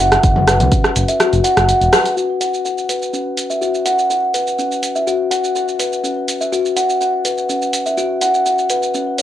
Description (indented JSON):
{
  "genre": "afro house",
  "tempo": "124 BPM",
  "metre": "4/4",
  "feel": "straight",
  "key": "unclear",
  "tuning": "A4 = 440 Hz",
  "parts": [
    { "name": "kalimba", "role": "arpeggios", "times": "0.0-9.2 s", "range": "C#4 to F#5", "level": "-16 LUFS", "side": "left 1 dB", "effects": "sidechain pumping, low-pass filter, cassette tape, analog delay" },
    { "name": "smooth gliding synth bass", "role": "bass", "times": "0.0-1.9 s", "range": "E1 to C#2", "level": "-17 LUFS", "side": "equal", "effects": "sidechain pumping" },
    { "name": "deep house drum kit", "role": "drums", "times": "0.1-9.2 s", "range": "hi-hat, rim click, shaker, toms", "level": "-19 LUFS", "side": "right 1 dB", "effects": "cassette tape" },
    { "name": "electronic kick drum", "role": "drums", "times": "0.2-0.8 s", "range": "none", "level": "-15 LUFS", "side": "equal", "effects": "cassette tape" }
  ],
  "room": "wet small room reverb, RT60 0.5 s",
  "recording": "home recording on cassette",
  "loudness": "-14 LUFS",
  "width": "side -11 dB against mid",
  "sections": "0.0-2.2 A section; 2.2-9.2 B section",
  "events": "kick drops out 1.2-2.2; band accent 1.9; filter sweep on kalimba 2.2-9.2",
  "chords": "0.0 N.C.; 2.2 F#5"
}